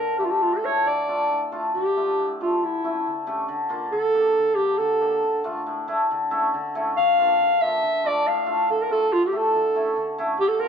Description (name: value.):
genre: klezmer.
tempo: 138 BPM.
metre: 2/4.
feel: straight.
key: D harmonic minor.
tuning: A4 = 440 Hz.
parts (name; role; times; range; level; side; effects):
mellow clarinet; melody; 0.0-10.7 s; E4 to F5; -21 LUFS; right 1 dB; none.
hammered dulcimer; accompaniment; 0.0-10.7 s; A2 to G4; -24 LUFS; left 1 dB; none.
room: wet stone room reverb, RT60 1.2 s.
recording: band playing live in one room, nothing above 7.8 kHz.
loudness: -20 LUFS.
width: side -7 dB against mid.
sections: 0.0-1.7 A section; 1.7-8.7 B section; 8.7-10.7 C section.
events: speeding up 0.0-10.7; clarinet solo 1.7-8.7.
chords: 0.0 Dm; 2.6 A/D; 3.5 Bb/D; 4.4 Gm/D; 5.2 Dm; 6.1 A/D; 7.0 Bb/D; 7.8 Dm; 8.7 D5; 9.5 A/D.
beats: 0.42 | 0.86 1.30 | 1.75 2.19 | 2.62 3.06 | 3.50 3.94 | 4.37 4.81 | 5.24 5.68 | 6.11 6.54 | 6.97 7.40 | 7.83 8.26 | 8.69 9.12 | 9.54 9.97 | 10.39.